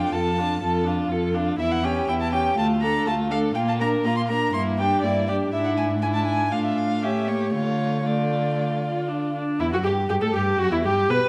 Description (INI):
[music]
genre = quick classical-period movement for string quartet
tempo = 121 BPM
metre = 4/4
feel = rubato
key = D minor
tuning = A4 = 442 Hz
[part]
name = warm violin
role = melody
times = 0.0-11.2 s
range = E4 to C6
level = -29 LUFS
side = equal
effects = none
[part]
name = warm violin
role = second line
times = 0.0-11.3 s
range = E4 to B4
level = -30 LUFS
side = equal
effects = none
[part]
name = rich viola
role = accompaniment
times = 0.0-11.3 s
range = A3 to B4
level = -29 LUFS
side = equal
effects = none
[part]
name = dark cello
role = bass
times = 0.0-11.2 s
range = D2 to D3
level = -28 LUFS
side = equal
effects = none
[sound]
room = wet recital hall reverb, RT60 1.6 s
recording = none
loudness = -23 LUFS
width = mono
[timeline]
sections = 0.0-9.6 A section; 9.6-11.3 B section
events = none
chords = 0.0 Dm/F; 1.6 C#dim/E; 2.6 Dm; 3.6 Bb; 4.5 Em7b5/G; 5.5 E7/G#; 6.5 Dm/A; 7.0 A7; 7.5 Dm; 9.6 Em